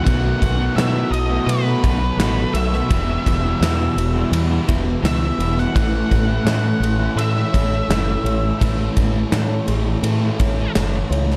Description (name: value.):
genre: rock, shoegaze and dream pop.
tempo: 84 BPM.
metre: 4/4.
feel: straight.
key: unclear.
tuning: A4 = 441 Hz.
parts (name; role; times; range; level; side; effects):
octave-fuzz lead guitar; melody; 0.0-10.7 s; B4 to F#5; -29 LUFS; equal; distortion, tape echo.
picked twelve-string acoustic guitar; arpeggios; 0.0-11.4 s; E3 to A4; -34 LUFS; equal; none.
biting overdriven guitar; riff; 0.0-11.4 s; E2 to B3; -30 LUFS; equal; none.
crunchy overdriven guitar; riff; 0.0-11.4 s; E2 to F#4; -29 LUFS; equal; reverse reverb.
thick fuzz guitar; riff; 0.0-11.4 s; E2 to B3; -27 LUFS; equal; distortion, analog chorus.
growling fingered electric bass; bass; 0.1-11.4 s; E1 to B2; -23 LUFS; equal; overdrive.
gated 80s drum kit; drums; 0.1-11.4 s; kick drum, ride cymbal, snare drum; -24 LUFS; equal; none.
room: small room ambience.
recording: dark, warm production.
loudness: -19 LUFS.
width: mono.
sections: 0.1-11.4 A section.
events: none.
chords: 0.1 B7sus4; 2.9 Emadd9; 5.8 Amaj7.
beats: | 0.06 0.77 1.48 2.19 | 2.90 3.61 4.33 5.04 | 5.75 6.47 7.18 7.89 | 8.61 9.32 10.04 10.76.